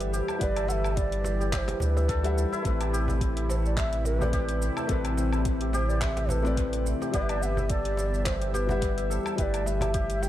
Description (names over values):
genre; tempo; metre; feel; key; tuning
organic downtempo; 107 BPM; 4/4; swing 55% on 16ths; A dorian; A4 = 441 Hz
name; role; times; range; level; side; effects
breathy mellow ney; melody; 0.0-10.3 s; B4 to G5; -33 LUFS; equal; dub echo
felt-muted upright piano; accompaniment; 0.0-10.3 s; G3 to G5; -34 LUFS; left 5 dB; sidechain pumping, analog delay
warm analog pad; sustained chords; 0.0-10.3 s; C3 to F#5; -36 LUFS; equal; chorus, vintage 12-bit sampler grit, sidechain pumping
santur; arpeggios; 0.0-10.3 s; E4 to E5; -36 LUFS; right 1 dB; dub echo
warm sub bass; bass; 0.0-10.3 s; G1 to D2; -28 LUFS; equal; sidechain pumping
deep house drum kit; drums; 0.0-10.3 s; handclaps, hi-hat, shaker, woodblock; -38 LUFS; equal; overdrive, analog delay
electronic kick drum; drums; 0.4-10.1 s; none; -32 LUFS; equal; overdrive
cajon; percussion; 0.7-10.3 s; none; -40 LUFS; left 1 dB; none
room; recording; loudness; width
light reverb, studio ambience; echo-heavy mix; -25 LUFS; side -13 dB against mid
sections
0.0-10.3 A section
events
none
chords
0.0 Emadd9/G; 2.7 Amadd9; 7.1 Emadd9/G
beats
| 0.41 0.97 1.53 2.09 | 2.65 3.21 3.77 4.33 | 4.90 5.46 6.02 6.58 | 7.14 7.70 8.26 8.82 | 9.38 9.94